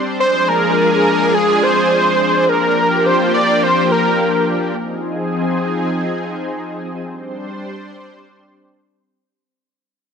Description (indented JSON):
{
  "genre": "synthwave",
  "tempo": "105 BPM",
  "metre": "4/4",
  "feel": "straight",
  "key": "C minor",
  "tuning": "A4 = 440 Hz",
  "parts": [
    { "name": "analog string pad", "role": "sustained chords", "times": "0.0-9.3 s", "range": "F3 to C5", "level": "-18 LUFS", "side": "left 1 dB", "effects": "ensemble chorus" },
    { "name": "wide unison lead", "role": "melody", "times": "0.2-4.4 s", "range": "Ab4 to D5", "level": "-15 LUFS", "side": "equal", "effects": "digital delay" }
  ],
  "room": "moderate plate reverb, RT60 2.8 s",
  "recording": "none",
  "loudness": "-13 LUFS",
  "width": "side -6 dB against mid",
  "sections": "0.0-4.8 A section; 4.8-9.3 B section",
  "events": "fade-out 4.8-9.3",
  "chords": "0.2 Ddim; 2.5 Gm7; 4.8 Fm7; 7.1 Csus2"
}